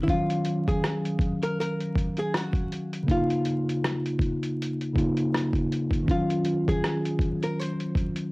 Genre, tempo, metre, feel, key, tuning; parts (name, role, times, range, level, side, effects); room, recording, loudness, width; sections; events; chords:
lo-fi hip hop; 80 BPM; 4/4; swing 56% on 16ths; A4 = 441 Hz
archtop guitar, miked and amplified; melody; 0.0-8.3 s; Fb4 to C5; -31 LUFS; equal
tine electric piano; accompaniment; 0.0-8.3 s; Db3 to F5; -26 LUFS; equal; slow stereo tremolo, cassette tape
lo-fi sampler-style drum kit; drums; 0.1-8.3 s; hi-hat, kick drum, rim click; -28 LUFS; equal; overdrive, vintage 12-bit sampler grit, cassette tape
moderate studio reverb, RT60 0.5 s; home recording on cassette, vinyl crackle; -24 LUFS; side -23 dB against mid
0.0-8.3 A section
0.1 Ebm9; 3.1 Db69; 6.1 Ebm9